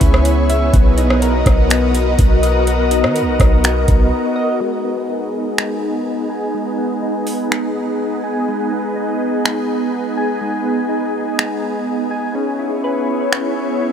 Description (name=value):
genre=hip hop, atmospheric cloud-rap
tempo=124 BPM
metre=4/4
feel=half-time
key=G# minor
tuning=A4 = 440 Hz
part: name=ethereal airy pad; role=sustained chords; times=0.0-13.9 s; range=B3 to D#5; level=-18 LUFS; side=equal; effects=ensemble chorus, built-in reverb, sidechain pumping, low-pass filter
part: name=soft electric-piano-like synth keys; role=arpeggios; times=0.0-13.9 s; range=G#3 to G#5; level=-22 LUFS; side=left 3 dB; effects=chorus, low-pass filter, digital delay
part: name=warm 808-style bass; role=bass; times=0.0-4.1 s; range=B1 to D#3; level=-16 LUFS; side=equal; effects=none
part: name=booming analog drum machine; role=drums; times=0.0-13.4 s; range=finger snaps, hi-hat, kick drum, rim click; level=-15 LUFS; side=equal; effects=overdrive
room=light reverb, digital ambience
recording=none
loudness=-15 LUFS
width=side -8 dB against mid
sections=0.0-4.6 A section; 4.6-13.9 B section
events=break 4.1-4.6; filter sweep 4.6-13.9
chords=0.0 C#m7; 0.7 Bmaj7; 4.6 G#m; 12.3 C#m7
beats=0.25 | 0.74 1.22 1.70 2.19 | 2.67 3.15 3.64 4.12 | 4.61 5.09 5.57 6.06 | 6.54 7.03 7.51 7.99 | 8.48 8.96 9.45 9.93 | 10.41 10.90 11.38 11.87 | 12.35 12.83 13.32 13.80